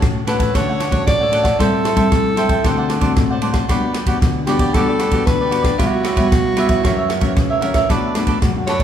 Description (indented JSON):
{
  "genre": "samba and choro",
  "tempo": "114 BPM",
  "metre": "4/4",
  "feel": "straight",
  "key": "D major",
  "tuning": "A4 = 440 Hz",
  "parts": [
    { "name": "nylon-string guitar", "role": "accompaniment", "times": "0.0-8.8 s", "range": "F#2 to F#4", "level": "-20 LUFS", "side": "left 2 dB", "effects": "none" },
    { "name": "open jazz drum kit", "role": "drums", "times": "0.0-8.8 s", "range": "kick drum, ride cymbal, rim click", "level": "-18 LUFS", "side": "equal", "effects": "none" },
    { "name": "warm soprano saxophone", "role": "melody", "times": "0.3-8.8 s", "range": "F#4 to D5", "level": "-20 LUFS", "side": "equal", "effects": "none" },
    { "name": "cavaquinho", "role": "accompaniment", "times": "0.3-8.8 s", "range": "D4 to G5", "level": "-22 LUFS", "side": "right 4 dB", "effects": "none" }
  ],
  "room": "wet recital hall reverb, RT60 1.4 s",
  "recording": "recorded in a church or concert hall",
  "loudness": "-14 LUFS",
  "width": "side -9 dB against mid",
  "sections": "0.0-8.8 A section",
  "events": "none",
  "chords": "0.0 Dmaj7; 1.6 Am7; 2.6 D7; 3.7 Gmaj7; 5.8 C#m7b5; 6.8 F#7; 7.9 Bm7"
}